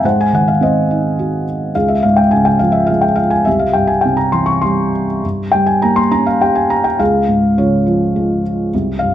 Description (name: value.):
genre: classical, lyrical solo piano.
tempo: 104 BPM.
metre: 3/4.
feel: rubato.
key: unclear.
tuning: A4 = 440 Hz.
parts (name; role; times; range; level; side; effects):
felt-muted upright piano; solo; 0.0-9.1 s; C2 to Db6; -12 LUFS; equal; none.
room: moderate recital hall reverb, RT60 1.6 s.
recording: dark, warm production.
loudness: -12 LUFS.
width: side -11 dB against mid.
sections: 0.0-9.1 A section.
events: none.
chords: 0.0 Ab7; 1.8 Db; 3.5 C; 5.2 Gdim; 7.0 Db.